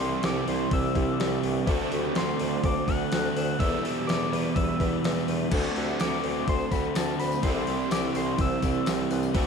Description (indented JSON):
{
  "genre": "rock, shoegaze and dream pop",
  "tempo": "125 BPM",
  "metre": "4/4",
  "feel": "straight",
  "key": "unclear",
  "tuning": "A4 = 440 Hz",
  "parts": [
    { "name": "soft struck synth lead", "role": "melody", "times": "0.0-9.1 s", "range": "A5 to F#6", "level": "-33 LUFS", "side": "left 3 dB", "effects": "chorus, slapback echo" },
    { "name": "deep dark ambient pad", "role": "sustained chords", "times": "0.0-9.5 s", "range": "G3 to D6", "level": "-40 LUFS", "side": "left 4 dB", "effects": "none" },
    { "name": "electric guitar through a small old amp", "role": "arpeggios", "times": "0.0-9.5 s", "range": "G4 to C5", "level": "-36 LUFS", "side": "left 2 dB", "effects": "ensemble chorus, slapback echo" },
    { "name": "crunchy overdriven guitar", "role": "riff", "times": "0.0-9.5 s", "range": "E2 to F#4", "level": "-34 LUFS", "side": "left 14 dB", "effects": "lush chorus" },
    { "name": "crunchy overdriven guitar", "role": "riff", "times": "0.0-9.5 s", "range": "E2 to F#4", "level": "-31 LUFS", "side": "right 11 dB", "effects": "reverse reverb" },
    { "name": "overdriven electric guitar", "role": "riff", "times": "0.0-9.5 s", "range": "E2 to D4", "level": "-32 LUFS", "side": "right 1 dB", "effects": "none" },
    { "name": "warm bassoon", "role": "bass", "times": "0.0-9.5 s", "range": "C2 to E2", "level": "-32 LUFS", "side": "left 1 dB", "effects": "none" },
    { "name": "gated 80s digital drum machine", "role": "drums", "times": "0.0-9.5 s", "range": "crash cymbal, hi-hat, kick drum, snare drum", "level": "-30 LUFS", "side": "left 1 dB", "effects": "gated reverb, gated reverb snare, overdrive" },
    { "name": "tambourine", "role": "percussion", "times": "5.5-9.4 s", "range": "none", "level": "-47 LUFS", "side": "left 13 dB", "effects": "none" }
  ],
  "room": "light reverb, digital ambience",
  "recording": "dark, warm production",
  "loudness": "-24 LUFS",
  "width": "side -6 dB against mid",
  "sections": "0.0-9.5 A section",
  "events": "none",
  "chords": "0.0 Cadd9; 1.7 D7sus4; 3.6 Em7; 5.5 D7sus4; 7.4 Cadd9",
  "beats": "0.24 0.72 1.20 | 1.68 2.16 2.64 3.12 | 3.60 4.08 4.56 5.04 | 5.52 6.00 6.48 6.96 | 7.44 7.92 8.40 8.88 | 9.35"
}